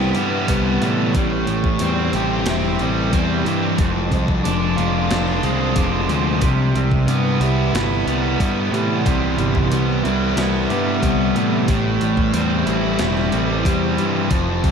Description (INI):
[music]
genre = rock, shoegaze and dream pop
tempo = 91 BPM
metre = 4/4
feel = straight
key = unclear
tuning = A4 = 440 Hz
[part]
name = electric guitar through a small old amp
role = arpeggios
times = 0.0-14.7 s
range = F3 to E4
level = -28 LUFS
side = left 2 dB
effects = analog chorus, tape echo
[part]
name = biting overdriven guitar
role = riff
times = 0.0-14.7 s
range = F2 to G4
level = -21 LUFS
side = right 6 dB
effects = reverse reverb
[part]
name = thick fuzz guitar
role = riff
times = 0.0-14.7 s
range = F2 to E4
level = -22 LUFS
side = left 6 dB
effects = distortion, lush chorus
[part]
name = fuzz picked electric bass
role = bass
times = 0.0-14.7 s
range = E1 to A2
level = -22 LUFS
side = equal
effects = overdrive
[part]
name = crisp 8-bit digital drum machine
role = drums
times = 0.1-14.7 s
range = hi-hat, kick drum, snare drum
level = -23 LUFS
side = equal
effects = none
[sound]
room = wet lush hall reverb, RT60 2.8 s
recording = dreamy mix soaked in reverb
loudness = -16 LUFS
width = side -6 dB against mid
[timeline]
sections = 0.0-14.7 A section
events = none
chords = 0.0 Cmaj7; 1.1 Am7; 3.8 Fm6; 6.4 Cmaj7; 11.7 Am7